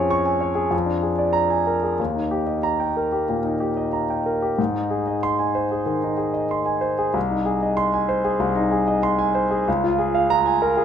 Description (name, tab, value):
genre	classical, virtuoso piano study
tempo	94 BPM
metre	4/4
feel	rubato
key	Ab major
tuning	A4 = 436 Hz
part	warm concert grand piano	solo	0.0-10.8 s	C2 to Db6	-19 LUFS	equal	none
room	moderate large studio reverb, RT60 1.4 s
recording	minimal, uncompressed stereo recording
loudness	-19 LUFS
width	side -8 dB against mid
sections	0.0-10.8 A section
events	none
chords	0.0 Db/F; 0.7 Bb7/F; 2.0 Eb; 4.6 Ab; 7.1 Ab/C; 9.7 Bbm7/Db